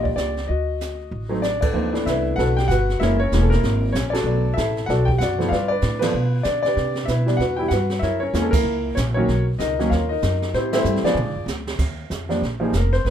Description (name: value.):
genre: jazz piano trio.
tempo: 191 BPM.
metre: 4/4.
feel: swing 61% on 8ths.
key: unclear.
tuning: A4 = 440 Hz.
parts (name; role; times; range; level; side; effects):
warm concert grand piano; melody; 0.0-13.1 s; Eb3 to G5; -21 LUFS; equal; none.
upright bass; bass; 0.0-13.1 s; E1 to D3; -23 LUFS; equal; none.
jazz brush drum kit; drums; 0.1-13.1 s; brushed snare drum, crash cymbal, hi-hat, kick drum, ride cymbal, snare drum, toms; -28 LUFS; right 2 dB; none.
room: light reverb.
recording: minimal, uncompressed stereo recording.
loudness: -19 LUFS.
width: side -9 dB against mid.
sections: 0.0-1.7 A section; 1.7-11.8 B section; 11.8-13.1 C section.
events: band accent 1.6, 4.1, 6.0, 8.5, 10.7; drum fill 11.2-11.8; grand piano solo 11.8-13.1.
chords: 0.5 D(b9); 1.7 G69; 3.0 F#7; 4.3 Bm7; 5.5 G7; 6.8 Cmaj7; 8.0 F#7; 9.3 Bmaj9; 10.5 Am7; 11.2 Bb7; 11.8 Ebsus2.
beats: 0.17 | 0.48 0.80 1.11 1.43 | 1.74 2.06 2.37 2.69 | 3.00 3.31 3.63 3.94 | 4.26 4.57 4.88 5.20 | 5.51 5.83 6.14 6.45 | 6.76 7.08 7.39 7.71 | 8.02 8.33 8.65 8.96 | 9.27 9.59 9.90 10.21 | 10.53 10.84 11.16 11.47 | 11.78 12.10 12.41 12.73 | 13.04.